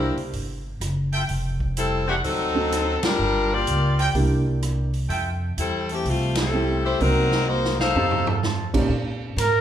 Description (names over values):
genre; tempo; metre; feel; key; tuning
jazz, big band swing; 126 BPM; 4/4; swing 66% on 8ths; F major; A4 = 440 Hz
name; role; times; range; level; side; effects
clear saxophone section; melody; 0.0-8.4 s; E3 to F5; -23 LUFS; left 2 dB; none
warm concert grand piano; accompaniment; 0.0-8.9 s; Bb2 to G4; -27 LUFS; right 3 dB; none
upright bass; bass; 0.0-9.6 s; F1 to Bb2; -25 LUFS; equal; none
swinging big-band drum kit; drums; 0.2-9.5 s; crash cymbal, hi-hat, kick drum, ride cymbal, rim click, snare drum, toms; -29 LUFS; right 2 dB; none
clear trumpet section; stabs; 1.1-8.7 s; Eb4 to A5; -29 LUFS; right 2 dB; none
mellow trumpet; melody; 9.4-9.6 s; Bb4; -18 LUFS; right 3 dB; none
room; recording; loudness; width
wet recital hall reverb, RT60 1.5 s; recorded in a church or concert hall; -20 LUFS; side -10 dB against mid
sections
0.0-8.9 A section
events
band accent 3.0, 6.3; drum fill 7.5-8.4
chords
0.0 Gsus4; 1.3 Fmaj9; 2.2 D7b9; 3.2 Gm7; 4.1 C7; 5.1 Fmaj9; 7.0 Cm7b5; 8.0 F7; 8.9 Bb7(no3)